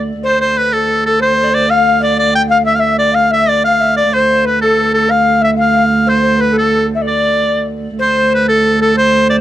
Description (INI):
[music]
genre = medieval dance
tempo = 124 BPM (dotted quarters)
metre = 6/8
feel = straight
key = D dorian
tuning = A4 = 441 Hz
[part]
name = bright shawm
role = melody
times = 0.0-9.4 s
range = A4 to G5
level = -13 LUFS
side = right 1 dB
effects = none
[part]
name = mellow tenor recorder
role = second line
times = 0.0-9.4 s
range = A4 to G5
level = -15 LUFS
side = left 4 dB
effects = tape echo
[part]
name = rich viola da gamba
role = drone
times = 0.0-9.4 s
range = D2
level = -17 LUFS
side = right 3 dB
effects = none
[sound]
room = light reverb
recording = dry, close 1970s-style studio recording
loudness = -10 LUFS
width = side -13 dB against mid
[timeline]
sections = 0.2-8.0 A section; 8.0-9.4 A section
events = none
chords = none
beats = | 0.23 0.72 | 1.21 1.69 | 2.18 2.66 | 3.15 3.63 | 4.12 4.61 | 5.09 5.58 | 6.06 6.55 | 7.03 7.52 | 8.00 8.49 | 8.97